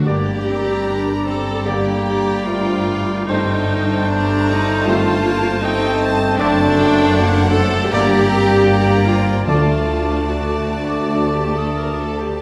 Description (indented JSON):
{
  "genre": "classical, slow romantic movement for symphony orchestra",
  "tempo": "76 BPM",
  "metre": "4/4",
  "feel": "uneven beats, rubato",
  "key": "G minor",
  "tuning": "A4 = 441 Hz",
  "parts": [
    { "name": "rich chamber violin section", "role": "second line", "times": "0.0-12.4 s", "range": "G4 to Eb5", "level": "-32 LUFS", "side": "equal", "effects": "none" },
    { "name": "rich studio viola section", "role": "accompaniment", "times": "0.0-12.4 s", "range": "D4 to Bb4", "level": "-23 LUFS", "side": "equal", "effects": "none" },
    { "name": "bright trombone section", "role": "sustained chords", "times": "0.0-11.4 s", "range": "D3 to A3", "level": "-31 LUFS", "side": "equal", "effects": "none" },
    { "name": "mellow French horn section", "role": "sustained chords", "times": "0.0-11.5 s", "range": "A3 to G4", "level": "-31 LUFS", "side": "equal", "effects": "none" },
    { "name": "concert harp", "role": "arpeggios", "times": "0.0-12.4 s", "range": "F#2 to A4", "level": "-30 LUFS", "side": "equal", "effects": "none" },
    { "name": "timpani", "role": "percussion", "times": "0.0, 7.9-10.7 s", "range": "G2 to D3", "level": "-26 LUFS", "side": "equal", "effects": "none" },
    { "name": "rich chamber violin section", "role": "melody", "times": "0.1-12.4 s", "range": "F#5 to Bb5", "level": "-30 LUFS", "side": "equal", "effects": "none" },
    { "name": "clear oboe", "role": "second line", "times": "0.1-12.4 s", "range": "C5 to D5", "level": "-30 LUFS", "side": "equal", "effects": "none" },
    { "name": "silver concert flute", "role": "second line", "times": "0.1-12.4 s", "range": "G5 to Eb6", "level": "-30 LUFS", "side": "equal", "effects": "none" },
    { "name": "warm clarinet", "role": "second line", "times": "0.1-12.4 s", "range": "G3 to D4", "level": "-29 LUFS", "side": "equal", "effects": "none" },
    { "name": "warm bassoon", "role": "accompaniment", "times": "0.1-12.4 s", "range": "G3 to Bb3", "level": "-28 LUFS", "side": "equal", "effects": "none" },
    { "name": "warm trumpet", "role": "stabs", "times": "0.1-11.4 s", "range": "C5 to D5", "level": "-29 LUFS", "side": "equal", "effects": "none" },
    { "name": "rich chamber cello section", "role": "bass", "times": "0.1-12.4 s", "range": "D2 to G2", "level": "-26 LUFS", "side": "equal", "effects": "none" },
    { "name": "rich chamber double bass section", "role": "bass", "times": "0.1-12.4 s", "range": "F#1 to D2", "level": "-25 LUFS", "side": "equal", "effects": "none" }
  ],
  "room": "wet scoring stage reverb, RT60 1.9 s",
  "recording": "none",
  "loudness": "-17 LUFS",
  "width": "mono",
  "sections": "0.1-12.4 A section",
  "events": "none",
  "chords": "0.1 Gm; 3.3 Am7b5/G; 6.4 D7/F#; 7.9 Gm; 9.5 D"
}